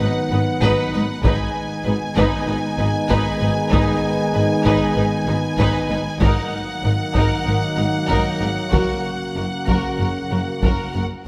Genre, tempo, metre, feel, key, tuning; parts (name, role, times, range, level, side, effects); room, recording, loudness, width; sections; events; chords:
cinematic, epic orchestral film score; 96 BPM; 4/4; straight; G# minor; A4 = 440 Hz
clear symphonic violin section; melody; 0.0-11.0 s; F#5 to G#5; -30 LUFS; equal
rich studio violin section; second line; 0.0-11.3 s; A#4 to B4; -30 LUFS; equal
rich studio viola section; accompaniment; 0.0-11.0 s; D#4 to F#4; -31 LUFS; equal
dark trombone section; sustained chords; 0.0-10.9 s; C#3 to G#3; -28 LUFS; equal
warm French horn section; sustained chords; 0.0-11.3 s; A#3 to F#4; -29 LUFS; equal
bright symphonic double bass section; bass; 0.0-11.0 s; F#1 to G#1; -28 LUFS; equal
rich symphonic cello section; bass; 0.0-11.0 s; F#2 to G#2; -27 LUFS; equal
taiko ensemble; drums; 0.6-11.3 s; -26 LUFS; equal
wet scoring stage reverb, RT60 2.0 s; -20 LUFS; mono
0.0-11.3 A section
0.0 B/G#; 1.2 G#m; 6.2 D#m/G#; 8.7 F#